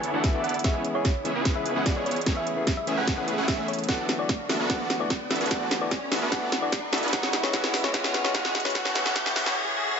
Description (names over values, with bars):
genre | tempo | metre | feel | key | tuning
future bass | 148 BPM | 4/4 | half-time | A major | A4 = 440 Hz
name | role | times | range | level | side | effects
thumb-piano-like synth pluck | melody | 0.0-9.5 s | C#5 to G#5 | -32 LUFS | equal | chorus, sidechain pumping, tape echo
muted studio string section | sustained chords | 0.0-9.6 s | C#3 to G#4 | -39 LUFS | right 2 dB | sidechain pumping, low-pass filter
supersaw chords | riff | 0.0-9.5 s | A3 to F#5 | -31 LUFS | right 1 dB | sidechain pumping, low-pass filter
wide detuned saw bass | bass | 0.0-9.5 s | A1 to E2 | -37 LUFS | equal | none
trap drum kit | drums | 0.0-9.5 s | hi-hat, snare drum | -28 LUFS | equal | none
riser | sound effects | 1.2-10.0 s | none | -34 LUFS | equal | none
barky tine electric piano | accompaniment | 0.1-10.0 s | E3 to A4 | -33 LUFS | left 4 dB | overdrive, sidechain pumping
electronic kick drum | drums | 0.2-9.2 s | none | -28 LUFS | equal | none
room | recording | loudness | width
light reverb | high-pass filter, nothing above 7.8 kHz | -23 LUFS | side -6 dB against mid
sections
0.0-10.0 A section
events
build-up 0.0-10.0; drum fill 0.0-9.6; filter sweep on supersaw synth 0.0-10.0; filter sweep on synth pluck 0.0-10.0; filter sweep 0.0-10.0; riser 1.2-10.0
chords
0.0 E7sus4; 0.6 C#m7; 2.3 Amaj7; 3.9 D6; 5.3 E7sus4; 7.1 C#m7; 8.8 Amaj7